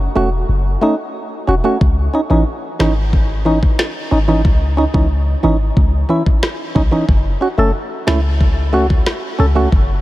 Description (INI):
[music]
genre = dancehall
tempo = 91 BPM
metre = 4/4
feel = straight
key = C# minor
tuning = A4 = 442 Hz
[part]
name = warm 808-style bass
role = bass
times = 0.0-10.0 s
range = E1 to C#2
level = -16 LUFS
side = equal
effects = none
[part]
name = percussive organ stab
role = accompaniment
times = 0.2-9.7 s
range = E3 to A4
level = -17 LUFS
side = right 1 dB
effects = chorus
[part]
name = island pop drum kit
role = drums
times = 1.8-9.9 s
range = kick drum, rim click, snare drum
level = -16 LUFS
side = equal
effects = none
[sound]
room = light reverb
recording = none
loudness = -13 LUFS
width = side -16 dB against mid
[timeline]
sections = 0.0-10.0 A section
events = none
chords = 0.0 F#m; 1.8 C#madd9; 7.1 F#m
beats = 0.49 1.15 | 1.81 2.47 3.13 3.79 | 4.45 5.11 5.77 6.43 | 7.09 7.75 8.40 9.06 | 9.72